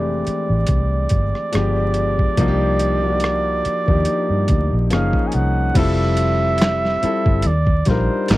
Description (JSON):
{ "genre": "R&B, neo-soul", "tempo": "71 BPM", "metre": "4/4", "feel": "swing 54% on 16ths", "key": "F major", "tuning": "A4 = 441 Hz", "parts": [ { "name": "breathy flugelhorn", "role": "melody", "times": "0.0-8.4 s", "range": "Bb4 to Ab5", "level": "-22 LUFS", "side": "right 3 dB", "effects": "none" }, { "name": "warm concert grand piano", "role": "accompaniment", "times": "0.0-8.4 s", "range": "E3 to Bb4", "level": "-22 LUFS", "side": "left 3 dB", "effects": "none" }, { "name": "vintage muted fingered electric bass", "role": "bass", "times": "0.0-8.4 s", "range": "F1 to G2", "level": "-20 LUFS", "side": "equal", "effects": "none" }, { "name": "boom bap sampler-style drum kit", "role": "drums", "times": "0.3-8.4 s", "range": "crash cymbal, handclaps, hi-hat, kick drum, rim click, snare drum", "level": "-20 LUFS", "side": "equal", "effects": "none" } ], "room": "light reverb", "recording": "dry, close 1970s-style studio recording, vinyl crackle", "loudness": "-16 LUFS", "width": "side -17 dB against mid", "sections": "0.0-5.8 A section; 5.8-8.4 B section", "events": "none", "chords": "0.0 Fmaj13; 1.5 G7b9; 2.4 Cm11; 4.9 Gbmaj13; 5.8 Fmaj9; 7.4 Ebmaj9" }